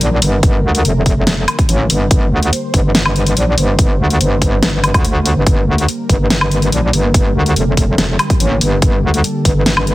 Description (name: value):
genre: heavy wobble dubstep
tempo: 143 BPM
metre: 4/4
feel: half-time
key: G minor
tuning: A4 = 440 Hz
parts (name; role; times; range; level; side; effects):
- lush unison pad; sustained chords; 0.0-9.9 s; D3 to C5; -22 LUFS; equal; chorus, sidechain pumping
- metallic wobble bass; bass; 0.0-9.9 s; F1 to D2; -14 LUFS; equal; chorus, overdrive
- big-room dance drum kit; drums; 0.0-9.9 s; hi-hat, snare drum, woodblock; -17 LUFS; left 1 dB; studio reverb
- electronic kick drum; drums; 0.4-9.5 s; none; -14 LUFS; equal; studio reverb
room: light reverb, digital ambience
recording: heavily compressed radio sound, multiband compression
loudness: -11 LUFS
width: side -17 dB against mid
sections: 0.0-9.9 A section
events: none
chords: 0.0 Gm